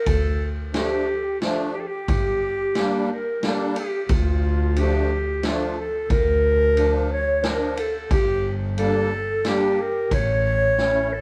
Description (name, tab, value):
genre	klezmer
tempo	90 BPM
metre	3/4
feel	straight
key	unclear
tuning	A4 = 440 Hz
part	warm clarinet	melody	0.0-11.2 s	F4 to C#5	-26 LUFS	equal	plate reverb
part	hollow alto flute	second line	0.0-11.2 s	F4 to C#5	-32 LUFS	equal	none
part	dark double bass	bass	0.1-10.9 s	G1 to D2	-28 LUFS	equal	none
part	street-band drum kit	drums	0.1-10.9 s	kick drum, ride cymbal, snare drum	-29 LUFS	equal	none
part	musette accordion	accompaniment	0.7-11.1 s	F3 to E4	-29 LUFS	equal	none
room	wet small room reverb, RT60 0.5 s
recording	heard from further back in the room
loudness	-22 LUFS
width	mono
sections	0.0-4.1 A section; 4.1-11.2 B section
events	drum fill 10.8-11.2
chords	0.1 Dm; 2.1 Gm; 4.1 Dm; 8.1 Gm; 10.1 A